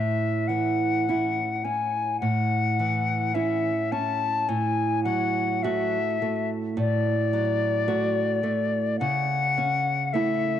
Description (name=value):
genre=romantic duo for flute and classical guitar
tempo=53 BPM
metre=4/4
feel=rubato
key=A major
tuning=A4 = 440 Hz
part: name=silver concert flute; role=melody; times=0.0-10.6 s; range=D5 to A5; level=-26 LUFS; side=left 6 dB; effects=cassette tape
part: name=nylon-string guitar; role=accompaniment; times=0.0-10.6 s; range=A2 to F#4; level=-26 LUFS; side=right 3 dB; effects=cassette tape
room=moderate lush hall reverb, RT60 2.8 s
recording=home recording on cassette, vinyl crackle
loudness=-23 LUFS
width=side -10 dB against mid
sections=0.0-10.6 A section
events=none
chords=0.0 A; 4.5 D/A; 9.0 A/C#